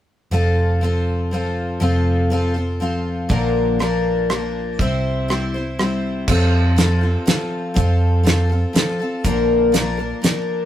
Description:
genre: folk rock and heartland rock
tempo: 121 BPM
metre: 3/4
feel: straight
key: F major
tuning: A4 = 440 Hz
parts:
  - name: picked twelve-string acoustic guitar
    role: accompaniment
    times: 0.3-10.7 s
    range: Bb2 to C5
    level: -20 LUFS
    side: left 2 dB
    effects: none
  - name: hollow-body short-scale picked electric bass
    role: bass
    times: 0.3-10.1 s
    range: F1 to F2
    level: -20 LUFS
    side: right 1 dB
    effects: none
  - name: damped 70s drum kit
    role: drums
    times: 3.3-10.4 s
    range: crash cymbal, hi-hat, kick drum, rim click, snare drum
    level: -19 LUFS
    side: equal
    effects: none
room: moderate small room reverb, RT60 0.6 s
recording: rough rehearsal-room recording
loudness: -16 LUFS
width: side -11 dB against mid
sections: 0.3-6.3 A section; 6.3-10.7 B section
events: none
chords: 0.3 F; 3.3 Bb; 4.8 C; 6.3 F; 9.2 Bb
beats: | 0.32 0.81 1.31 | 1.81 2.31 2.81 | 3.31 3.80 4.30 | 4.79 5.29 5.79 | 6.28 6.78 7.27 | 7.76 8.26 8.75 | 9.25 9.74 10.23

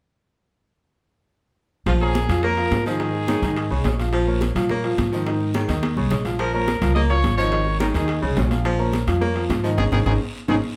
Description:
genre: latin, salsa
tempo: 212 BPM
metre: 4/4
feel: straight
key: Bb minor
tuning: A4 = 440 Hz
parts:
  - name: clear trumpet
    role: melody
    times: 1.9-4.0, 6.4-10.6 s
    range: F4 to Eb5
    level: -28 LUFS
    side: equal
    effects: none
  - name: clear baritone saxophone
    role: second line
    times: 1.9-10.6 s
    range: Db3 to Bb3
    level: -30 LUFS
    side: equal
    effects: none
  - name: upright bass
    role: bass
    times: 1.9-10.6 s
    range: Ab1 to Bb2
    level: -25 LUFS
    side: equal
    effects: none
  - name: bongos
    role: percussion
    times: 1.9-10.5 s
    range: none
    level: -35 LUFS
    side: equal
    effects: none
  - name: congas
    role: percussion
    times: 1.9-10.6 s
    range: none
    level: -32 LUFS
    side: equal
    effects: none
  - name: guiro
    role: percussion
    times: 1.9-10.5 s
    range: none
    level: -42 LUFS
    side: equal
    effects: none
  - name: timbales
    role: percussion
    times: 1.9-10.6 s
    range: none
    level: -36 LUFS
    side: equal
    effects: none
  - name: bright upright piano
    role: accompaniment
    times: 2.0-10.6 s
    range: Eb3 to F5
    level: -28 LUFS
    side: equal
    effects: none
room: wet studio reverb, RT60 0.7 s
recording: heard from further back in the room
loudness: -21 LUFS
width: mono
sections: 1.9-10.8 A section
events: drum fill 5.7-6.4, 10.1-10.8; band accent 9.8-10.8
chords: 1.9 Bbm; 3.0 Absus4; 4.1 Bbm; 5.3 Absus4; 6.4 Bbm; 7.5 Absus4; 8.7 Bbm; 9.8 Absus4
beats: | 1.86 2.15 2.43 2.71 | 3.00 3.28 3.56 3.85 | 4.13 4.41 4.70 4.98 | 5.26 5.54 5.83 6.11 | 6.39 6.67 6.96 7.24 | 7.52 7.80 8.09 8.37 | 8.65 8.93 9.22 9.50 | 9.78 10.06 10.34

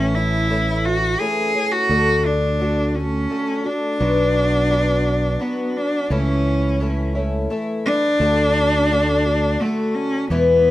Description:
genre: acoustic folk duo or small band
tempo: 86 BPM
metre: 3/4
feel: straight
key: unclear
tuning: A4 = 440 Hz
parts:
  - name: clear cello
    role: melody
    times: 0.0-10.7 s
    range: A3 to G#4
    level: -20 LUFS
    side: equal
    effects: none
  - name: fingerpicked twelve-string acoustic guitar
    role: accompaniment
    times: 0.0-10.7 s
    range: E2 to F#4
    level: -22 LUFS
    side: left 3 dB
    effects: none
  - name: fingered electric bass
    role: bass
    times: 0.0-10.7 s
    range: A1 to E2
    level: -21 LUFS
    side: right 1 dB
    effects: none
room: light reverb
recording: none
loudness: -17 LUFS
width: side -15 dB against mid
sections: 0.0-10.7 A section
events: none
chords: 0.0 A; 1.9 D; 4.0 Bm; 6.1 A/C#; 8.2 D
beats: 0.49 1.19 | 1.90 2.60 3.30 | 4.00 4.70 5.40 | 6.10 6.80 7.50 | 8.20 8.90 9.60 | 10.30

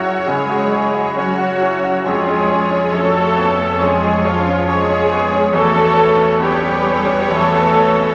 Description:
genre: classical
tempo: 68 BPM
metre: 4/4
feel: rubato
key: unclear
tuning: A4 = 444 Hz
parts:
  - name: clear baby grand piano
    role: melody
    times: 0.0-8.1 s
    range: E2 to C#5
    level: -22 LUFS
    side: equal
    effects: none
  - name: warm symphonic violin section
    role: melody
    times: 0.0-8.1 s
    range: C#5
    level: -28 LUFS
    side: equal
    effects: none
  - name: concert flute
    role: second line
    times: 0.0-8.1 s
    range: E#5 to A5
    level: -28 LUFS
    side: equal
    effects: none
  - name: warm clarinet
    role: second line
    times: 0.0-8.1 s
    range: C#4 to F#4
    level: -26 LUFS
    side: equal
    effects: none
  - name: warm studio violin section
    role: second line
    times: 0.0-8.1 s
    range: B4 to C#5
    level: -26 LUFS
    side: equal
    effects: none
  - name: clear symphonic viola section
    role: accompaniment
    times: 0.0-8.1 s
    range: E#4 to A4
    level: -22 LUFS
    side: equal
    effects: none
  - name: clear trombone section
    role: sustained chords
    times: 0.0-8.1 s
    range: B2 to C#4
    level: -32 LUFS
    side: equal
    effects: none
  - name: dark French horn section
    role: sustained chords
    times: 0.0-8.1 s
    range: E#3 to A3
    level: -24 LUFS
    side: equal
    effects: none
  - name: dark studio double bass section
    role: bass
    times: 0.0-8.1 s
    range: E2 to F#2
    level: -31 LUFS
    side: equal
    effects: none
  - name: rich symphonic cello section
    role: bass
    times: 0.0-8.1 s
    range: E#3 to A3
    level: -29 LUFS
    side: equal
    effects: none
  - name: warm cor anglais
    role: second line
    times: 0.3-7.9 s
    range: C#5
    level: -29 LUFS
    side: equal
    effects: none
  - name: warm bassoon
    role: accompaniment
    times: 0.3-7.9 s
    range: B3 to C#4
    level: -33 LUFS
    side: equal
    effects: none
room: wet concert hall reverb, RT60 2.2 s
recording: none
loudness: -15 LUFS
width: mono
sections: 0.0-8.1 A section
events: none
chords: 0.0 F#5; 2.1 C#/E#; 5.6 C#m7b5/E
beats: 0.29 1.19 | 2.07 2.94 3.81 4.69 | 5.55 6.41 7.30

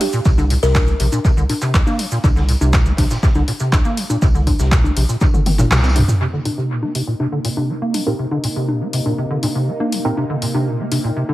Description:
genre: acid house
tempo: 121 BPM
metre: 4/4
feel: straight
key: C minor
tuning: A4 = 440 Hz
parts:
  - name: buzzing kalimba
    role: melody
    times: 0.0-1.0 s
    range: G4 to Bb4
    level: -23 LUFS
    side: equal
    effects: tape echo
  - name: acid bass, square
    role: riff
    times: 0.0-11.3 s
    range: Bb2 to C4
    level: -21 LUFS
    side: equal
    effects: wide subtle chorus, sidechain pumping, dub echo
  - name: punchy analog drum machine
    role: drums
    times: 0.0-11.3 s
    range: congas, handclaps, hi-hat, toms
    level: -22 LUFS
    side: left 1 dB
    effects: overdrive, small room ambience, dub echo
  - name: raw garage drum kit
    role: drums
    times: 0.0-6.1 s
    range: hi-hat, snare drum, tambourine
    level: -35 LUFS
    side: right 1 dB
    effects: sidechain pumping on hats, high-pass filter on hats, small room ambience, high-pass filter on snare, sidechain pumping on perc, high-pass filter on perc, high-pass filter on room, dub echo
  - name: cabasa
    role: percussion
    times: 0.1-6.2 s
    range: none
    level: -33 LUFS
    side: right 3 dB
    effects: none
  - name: saturated sub bass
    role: bass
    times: 0.3-6.0 s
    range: G1 to C2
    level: -17 LUFS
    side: equal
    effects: sidechain pumping
  - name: electronic kick drum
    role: drums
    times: 0.3-5.3 s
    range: none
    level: -15 LUFS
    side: equal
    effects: small room ambience
  - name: warm analog pad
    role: sustained chords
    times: 6.2-11.3 s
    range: C3 to Eb4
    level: -25 LUFS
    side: equal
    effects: chorus, sidechain pumping
  - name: filtered dub chord stab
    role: stabs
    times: 8.1-10.1 s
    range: C4 to Bb4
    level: -26 LUFS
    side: right 2 dB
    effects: chorus, dub echo
room: light reverb, studio ambience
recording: echo-heavy mix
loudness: -15 LUFS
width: side -16 dB against mid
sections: 0.0-6.2 A section; 6.2-11.3 B section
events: drum fill 5.2-6.2; kick drops out 5.7-6.2; band accent 5.7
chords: 0.0 C5; 6.2 Cm7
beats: | 0.26 0.75 1.25 1.74 | 2.24 2.73 3.23 3.73 | 4.22 4.72 5.21 5.71 | 6.21 6.70 7.20 7.69 | 8.19 8.69 9.18 9.68 | 10.17 10.67 11.16

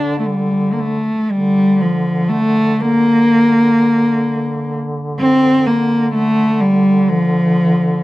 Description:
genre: caucasian folk, Caucasian lament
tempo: 62 BPM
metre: 4/4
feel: rubato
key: D minor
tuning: A4 = 437 Hz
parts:
  - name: warm cello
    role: melody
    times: 0.0-8.0 s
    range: F3 to D4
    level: -13 LUFS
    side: equal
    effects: none
  - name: mellow duduk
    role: drone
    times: 0.0-8.0 s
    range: D3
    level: -22 LUFS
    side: equal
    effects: none
room: light reverb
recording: close, detailed microphones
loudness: -12 LUFS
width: side -18 dB against mid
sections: 0.0-1.3 A section; 1.3-8.0 B section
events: none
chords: none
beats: 0.27 | 1.30 2.29 3.27 4.24 | 5.20 6.16 7.11

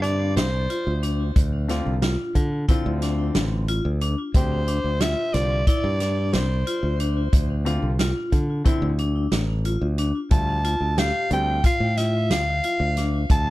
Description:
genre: progressive instrumental, band music in an uneven meter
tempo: 181 BPM (eighths)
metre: 9/8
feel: straight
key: D minor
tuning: A4 = 436 Hz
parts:
  - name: growling soprano saxophone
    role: melody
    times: 0.0-13.5 s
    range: C5 to A5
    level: -26 LUFS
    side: equal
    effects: digital delay
  - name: clear concert grand piano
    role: accompaniment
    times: 0.0-11.6 s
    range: D3 to G4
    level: -30 LUFS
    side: left 2 dB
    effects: none
  - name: vibraphone with hard mallets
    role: arpeggios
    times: 0.0-13.2 s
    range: D4 to G4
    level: -29 LUFS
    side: left 2 dB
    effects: digital delay
  - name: modern bright fingered electric bass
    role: bass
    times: 0.0-13.5 s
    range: A1 to D3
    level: -23 LUFS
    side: equal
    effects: none
  - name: vintage drum kit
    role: drums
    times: 0.0-13.5 s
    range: hi-hat, kick drum, snare drum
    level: -22 LUFS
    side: equal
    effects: none
room: little or no reverb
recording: dark, warm production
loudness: -20 LUFS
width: side -17 dB against mid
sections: 0.0-13.5 A section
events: none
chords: 0.0 Dm7; 10.3 Fadd9/D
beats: 0.04 0.37 0.70 1.03 | 1.36 1.70 2.03 2.36 2.69 3.02 3.35 3.69 4.02 | 4.35 4.68 5.01 5.34 5.67 6.01 6.34 6.67 7.00 | 7.33 7.67 8.00 8.33 8.66 8.99 9.32 9.65 9.99 | 10.32 10.65 10.98 11.31 11.64 11.98 12.31 12.64 12.97 | 13.30

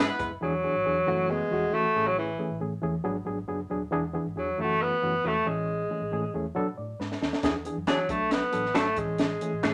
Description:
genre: uptempo 1960s-style soul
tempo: 137 BPM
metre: 4/4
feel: straight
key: E mixolydian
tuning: A4 = 439 Hz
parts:
  - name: barky reed electric piano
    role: accompaniment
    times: 0.0-9.7 s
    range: E3 to D5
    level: -34 LUFS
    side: equal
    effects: overdrive, fast tremolo
  - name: semi-hollow electric guitar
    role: stabs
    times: 0.0-0.1, 7.9-9.7 s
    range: E3 to A4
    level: -32 LUFS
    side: equal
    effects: phaser
  - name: vintage muted fingered electric bass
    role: bass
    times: 0.0-9.7 s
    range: D#1 to E3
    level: -42 LUFS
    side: equal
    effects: none
  - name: compact cocktail drum kit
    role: drums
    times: 0.2-0.3, 7.0-9.7 s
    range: hi-hat, kick drum, snare drum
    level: -31 LUFS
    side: equal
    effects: none
  - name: clear alto saxophone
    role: melody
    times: 0.4-9.7 s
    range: E3 to B3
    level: -29 LUFS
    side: equal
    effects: none
  - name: hollow-body jazz guitar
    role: riff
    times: 1.1-1.9 s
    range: A3 to G#4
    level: -35 LUFS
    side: equal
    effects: none
room: wet studio reverb, RT60 0.6 s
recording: none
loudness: -28 LUFS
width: mono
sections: 0.4-9.7 A section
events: drum fill 7.0-7.4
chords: 0.4 E7; 1.1 F#m7; 2.0 Amaj7; 3.0 G#m7b5; 3.9 E7; 4.6 F#m7; 5.5 Amaj7; 6.6 Bm7; 7.4 E7; 8.1 Bm7; 9.0 Amaj7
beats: | 0.42 0.86 1.29 1.73 | 2.17 2.61 3.05 3.49 | 3.92 4.36 4.80 5.24 | 5.68 6.12 6.56 7.00 | 7.43 7.88 8.31 8.75 | 9.19 9.63

